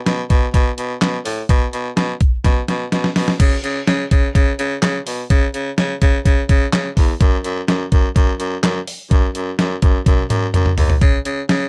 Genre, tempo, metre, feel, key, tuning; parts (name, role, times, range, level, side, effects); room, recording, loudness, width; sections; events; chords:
synth-pop; 126 BPM; 4/4; straight; C# minor; A4 = 440 Hz
growling baritone saxophone; bass; 0.1-11.7 s; D#2 to C#3; -23 LUFS; equal
detuned 8-bit digital drum machine; drums; 0.1-11.6 s; crash cymbal, handclaps, hi-hat, kick drum, snare drum, toms; -17 LUFS; equal
light reverb; dark, warm production; -17 LUFS; mono
0.0-3.4 A section; 3.4-11.7 B section
drum fill 2.4-3.4, 10.1-11.0